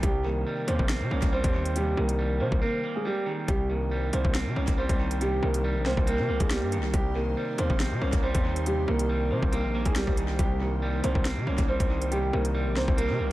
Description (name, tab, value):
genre	hip hop, drill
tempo	139 BPM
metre	4/4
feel	half-time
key	C minor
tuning	A4 = 440 Hz
part	dark concert grand piano	melody	0.0-13.3 s	G3 to Db5	-30 LUFS	right 1 dB	tape echo
part	electric guitar at the edge of break-up	accompaniment	0.0-13.3 s	C3 to C4	-32 LUFS	right 2 dB	none
part	distorted 808-style bass	bass	0.0-13.3 s	Bb1 to C3	-28 LUFS	equal	distortion
part	drill drum kit	drums	0.0-13.1 s	hi-hat, kick drum, snare drum	-28 LUFS	equal	vintage 12-bit sampler grit, tape echo
part	airy breathy pad	sustained chords	3.9-13.3 s	Bb3 to C5	-39 LUFS	equal	chorus, phaser
room	little or no reverb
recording	echo-heavy mix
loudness	-24 LUFS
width	side -16 dB against mid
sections	0.0-13.3 A section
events	break 2.6-3.5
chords	0.0 Cm7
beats	| 0.03 0.46 0.89 1.32 | 1.76 2.19 2.62 3.05 | 3.48 3.92 4.35 4.78 | 5.21 5.64 6.07 6.50 | 6.94 7.37 7.80 8.23 | 8.66 9.10 9.53 9.96 | 10.39 10.82 11.25 11.69 | 12.12 12.55 12.98